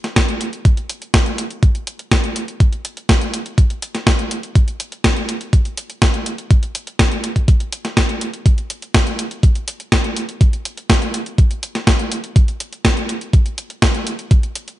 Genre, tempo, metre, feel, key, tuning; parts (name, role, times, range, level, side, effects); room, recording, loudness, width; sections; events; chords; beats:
italo disco; 123 BPM; 4/4; straight
clean 12-bit digital drum machine; drums; 0.0-14.8 s; hi-hat, snare drum; -19 LUFS; equal; overdrive, gated reverb
electronic kick drum; drums; 0.2-14.4 s; -13 LUFS; equal; overdrive
digital ambience; nothing above 10.7 kHz; -15 LUFS; side -15 dB against mid
0.0-14.8 A section
0.16 | 0.65 1.14 1.63 2.12 | 2.60 3.09 3.58 4.07 | 4.55 5.04 5.53 6.02 | 6.51 6.99 7.48 7.97 | 8.46 8.95 9.43 9.92 | 10.41 10.90 11.38 11.87 | 12.36 12.85 13.34 13.82 | 14.31